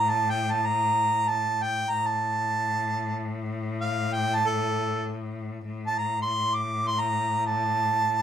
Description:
Turkish makam ensemble; free time; A makam kurdi; A4 = 441 Hz
warm harmonica; melody; 0.0-8.2 s; A4 to D6; -24 LUFS; right 2 dB
clear cello; drone; 0.0-8.2 s; A2; -31 LUFS; left 3 dB
moderate studio ambience, RT60 0.5 s; band playing live in one room; -24 LUFS; side -9 dB against mid
0.0-5.7 A section; 5.7-8.2 A section

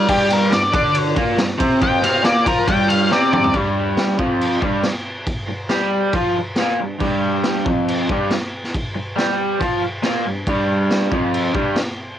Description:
garage rock duo or trio; 139 BPM; 4/4; straight; A4 = 441 Hz
octave-fuzz lead guitar; melody; 0.0-3.5 s; G4 to G5; -18 LUFS; left 1 dB; distortion, cassette tape
raw garage guitar; riff; 0.0-11.8 s; F2 to G4; -18 LUFS; equal; overdrive, cassette tape
raw garage drum kit; drums; 0.1-11.9 s; crash cymbal, kick drum, ride cymbal, snare drum, toms; -22 LUFS; equal; cassette tape
light reverb; home recording on cassette; -16 LUFS; side -10 dB against mid
0.0-3.5 A section; 3.5-12.2 B section
lead electric guitar solo 0.0-3.5; drum fill 3.1-3.5
0.0 G5

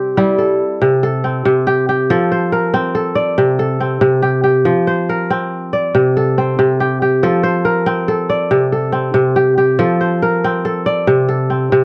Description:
west african traditional; 94 BPM (dotted quarters); 12/8; straight; F major; A4 = 440 Hz
kora; solo; 0.0-11.8 s; C3 to D5; -15 LUFS; equal
moderate studio reverb, RT60 0.5 s; worn, warbling old tape, cassette tape, warbly pitch drift; -15 LUFS; mono
0.8-11.8 A section
0.0 C; 2.1 F; 3.4 C5; 4.7 F5; 5.9 C5; 7.2 F; 8.5 C5; 9.8 F; 11.1 C5

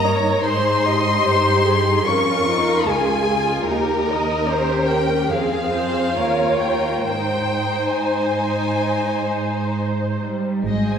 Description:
classical, slow romantic movement for string orchestra; 65-75 BPM; 4/4; rubato; Ab major; A4 = 441 Hz
rich chamber violin section; melody; 0.0-11.0 s; Bb4 to Db6; -22 LUFS; left 4 dB
rich studio violin section; second line; 0.0-11.0 s; C4 to Ab5; -23 LUFS; left 1 dB
warm symphonic viola section; accompaniment; 0.0-11.0 s; G4 to Eb5; -23 LUFS; right 2 dB
warm studio cello section; bass; 0.0-11.0 s; Db2 to Ab3; -24 LUFS; right 2 dB
dark chamber double bass section; bass; 10.7-11.0 s; Ab1; -23 LUFS; right 3 dB
wet concert hall reverb, RT60 1.9 s; heard from further back in the room; -17 LUFS; side -7 dB against mid
0.0-10.7 A section
0.5 Ab; 2.1 Db/F; 3.7 Eb; 5.3 Fm; 6.2 Eb; 7.1 Ab

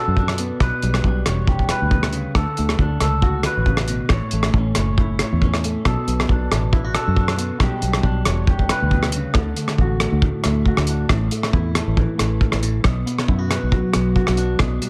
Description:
highlife guitar band; 137 BPM; 4/4; swing 54% on 16ths; D major; A4 = 440 Hz
clean electric guitar; accompaniment; 0.0-14.9 s; A2 to C#5; -26 LUFS; equal
fingered electric bass; bass; 0.1-14.8 s; E1 to F#2; -24 LUFS; equal
cloth-damped thuddy drum kit; drums; 0.2-14.9 s; hi-hat, kick drum, rim click; -23 LUFS; equal
light reverb; -20 LUFS; mono
0.0-9.4 A section; 9.4-14.9 B section
0.0 Bm7; 0.6 G; 2.4 D; 4.1 A; 5.9 Bm7; 7.6 G; 9.4 D; 11.1 A5; 12.9 Bm

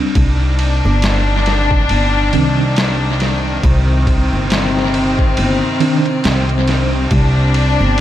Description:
trip hop; 69 BPM; 4/4; swing 57% on 16ths; C minor; A4 = 439 Hz
mellow tine electric piano; accompaniment; 0.0-6.1 s; Eb3 to D4; -21 LUFS; right 3 dB; medium stereo tremolo, tape echo
warm studio string section; sustained chords; 0.2-8.0 s; C3 to D4; -17 LUFS; left 2 dB
upright bass; bass; 0.2-8.0 s; G1 to C2; -16 LUFS; equal
trip hop sampler-style drum kit; drums; 0.2-8.0 s; kick drum, ride cymbal, snare drum; -18 LUFS; equal; tape echo
light reverb; echo-heavy mix; -12 LUFS; side -12 dB against mid
0.0-8.0 A section
0.2 Cmadd9; 7.1 Gsus4

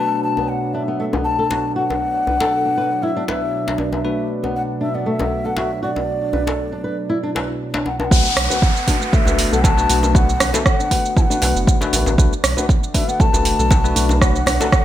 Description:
afro house; 118 BPM; 4/4; swing 54% on 16ths; B minor; A4 = 444 Hz
breathy mellow bass bansuri; melody; 0.0-14.8 s; D5 to A5; -22 LUFS; left 2 dB; digital delay
warm analog pad; sustained chords; 0.0-14.8 s; B2 to D4; -27 LUFS; right 3 dB; chorus, sidechain pumping
bell-like tine electric piano; stabs; 0.0-14.7 s; A3 to B4; -26 LUFS; left 4 dB; fast stereo tremolo, sidechain pumping, low-pass filter, digital delay
flamenco guitar; arpeggios; 0.4-14.7 s; A3 to B4; -26 LUFS; equal; sidechain pumping, digital delay
djembe; percussion; 0.4-14.7 s; -26 LUFS; left 2 dB
warm sub bass; bass; 8.1-14.6 s; F#1 to B1; -20 LUFS; right 1 dB; sidechain pumping
afro-pop drum kit; drums; 8.1-14.8 s; hi-hat, rim click, shaker; -21 LUFS; right 4 dB; low-pass filter on perc, small room ambience, low-pass filter on snare, low-pass filter on hats, gated reverb
electronic kick drum; drums; 8.1-14.8 s; -16 LUFS; right 1 dB; overdrive, small room ambience
downlifter; sound effects; 8.1-12.2 s; -24 LUFS; equal
moderate plate reverb, RT60 1.1 s, digital ambience; bright 1980s-style digital production; -16 LUFS; side -12 dB against mid
0.0-8.1 A section; 8.1-14.8 B section
filter sweep on tine electric piano 0.0-8.1; drop 8.1-14.8
0.0 Bm7

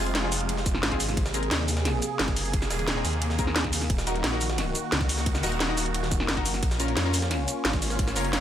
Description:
dark technical drum and bass; 176 BPM; 4/4; straight; A4 = 442 Hz
sweeping resonant pad; sustained chords; 0.0-8.4 s; C3 to Ab4; -32 LUFS; equal; chorus, sidechain pumping
orchestra-hit-like synth stab; stabs; 0.0-8.4 s; C4 to Bb4; -33 LUFS; left 3 dB; built-in reverb, ping-pong delay
snarling distorted saw bass; bass; 0.0-8.4 s; Eb1 to F2; -29 LUFS; equal; distortion, overdrive
drum and bass drum kit; drums; 0.1-8.4 s; hi-hat, shaker, snare drum; -28 LUFS; equal
jungle sampler-style drum kit; drums; 0.1-8.4 s; hi-hat, ride cymbal, snare drum; -35 LUFS; right 1 dB; high-pass filter on cymbals, high-pass filter on snare, high-pass filter on hats, high-pass filter on room
electronic kick drum; drums; 0.7-8.1 s; -28 LUFS; equal
digital ambience; -24 LUFS; side -10 dB against mid
0.0-8.4 A section
0.0 Fm; 1.2 Abadd9; 3.9 Ebm; 6.6 Bbm

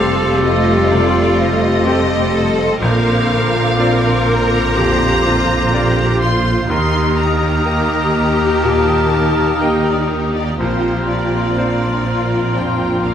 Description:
cinematic; 62 BPM; 4/4; rubato; Bb major; A4 = 440 Hz
warm symphonic violin section; melody; 0.0-13.1 s; Bb4 to C6; -23 LUFS; left 2 dB
clear oboe; second line; 0.0-13.1 s; A4 to C5; -23 LUFS; right 1 dB
dark clarinet; second line; 0.0-13.1 s; F4 to G4; -24 LUFS; left 2 dB
dark symphonic violin section; second line; 0.0-13.1 s; C4 to G4; -24 LUFS; left 2 dB
mellow large flute ensemble; second line; 0.0-13.1 s; C6 to Eb6; -26 LUFS; left 4 dB
bright concert grand piano; accompaniment; 0.0-13.1 s; Bb1 to Eb5; -22 LUFS; left 1 dB
rich symphonic viola section; accompaniment; 0.0-13.1 s; D3 to Bb3; -22 LUFS; right 2 dB
dark French horn section; sustained chords; 0.0-13.1 s; A3 to G4; -23 LUFS; left 6 dB
rich studio double bass section; bass; 0.0-13.1 s; F1 to Eb2; -20 LUFS; right 3 dB
rich symphonic cello section; bass; 0.0-13.1 s; D4 to Bb4; -22 LUFS; right 1 dB
moderate concert hall reverb, RT60 1.8 s; -13 LUFS; side -9 dB against mid
0.0-13.1 A section
0.0 Fadd9; 2.8 Bbadd9; 6.7 Eb; 10.6 Bbadd9

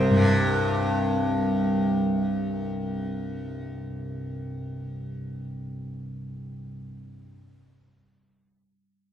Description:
indian classical; free time; A4 = 441 Hz
santur; melody; 0.0-0.8 s; C5; -34 LUFS; left 1 dB
tanpura; drone; 0.0-7.3 s; C2 to C3; -25 LUFS; equal
wet recital hall reverb, RT60 1.8 s; recorded in a church or concert hall; -25 LUFS; side -10 dB against mid

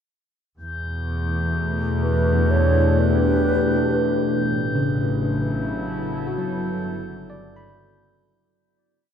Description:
ambient; 61 BPM; 4/4; straight; E dorian; A4 = 439 Hz
warbly tape-like pad; sustained chords; 1.0-8.5 s; B2 to A4; -24 LUFS; left 2 dB; chorus, built-in reverb
bright studio double bass section; bass; 0.6-8.4 s; G1 to E2; -24 LUFS; equal
glass harmonica; texture; 0.6-8.5 s; G6; -32 LUFS; left 2 dB
wooden-headed alto flute; melody; 2.0-4.5 s; B4 to C#5; -26 LUFS; right 1 dB; diffuse ambient delay
bright tine electric piano; arpeggios; 3.8-9.1 s; C#3 to B5; -26 LUFS; left 1 dB; diffuse ambient delay
wet cathedral reverb, RT60 5.9 s; in a vast, echoing space; -19 LUFS; side -8 dB against mid
0.6-8.4 A section
fade-out 4.5-8.4
0.6 Em7; 4.5 A7; 6.5 G

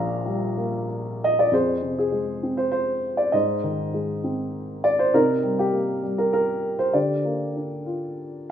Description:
classical, lyrical solo piano; 99 BPM; 3/4; rubato; A4 = 439 Hz
dark upright piano; solo; 0.0-8.5 s; Bb1 to Bb5; -21 LUFS; equal
moderate recital hall reverb, RT60 1.6 s; minimal, uncompressed stereo recording; -21 LUFS; side -9 dB against mid
0.0-1.5 A section; 1.5-8.5 B section
0.0 Gm7/Bb; 1.5 Fm; 3.3 Ab; 5.1 Cm7; 7.0 Bb6/D

